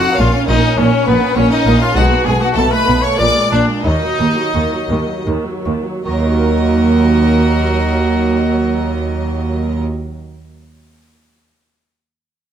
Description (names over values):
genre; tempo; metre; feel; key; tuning
classical, baroque-style concerto movement with solo episodes; 75-102 BPM; 3/4; straight; Eb minor; A4 = 443 Hz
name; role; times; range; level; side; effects
bright trumpet; melody; 0.0-9.8 s; Cb4 to D5; -19 LUFS; left 2 dB; none
clear chamber violin section; melody; 0.0-9.8 s; Cb5 to D6; -23 LUFS; left 5 dB; none
lute; accompaniment; 0.0-10.1 s; Eb2 to Bb4; -24 LUFS; right 1 dB; none
rich chamber viola section; accompaniment; 0.0-9.8 s; Eb3 to Eb4; -20 LUFS; right 3 dB; none
bright studio violin section; second line; 0.2-9.8 s; Cb4 to D5; -23 LUFS; left 2 dB; none
clear chamber double bass section; bass; 0.2-9.8 s; Bb1 to Eb2; -18 LUFS; right 1 dB; none
rich chamber cello section; bass; 0.2-9.8 s; Eb2 to Cb3; -18 LUFS; right 3 dB; none
room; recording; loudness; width
moderate recital hall reverb, RT60 1.8 s; close, detailed microphones; -12 LUFS; side -9 dB against mid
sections
0.0-6.1 A section; 6.1-10.8 B section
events
slowing down 1.1-6.1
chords
0.2 Bbm; 2.0 Abm/Cb; 2.6 B7; 3.2 Bb7; 3.9 Ebm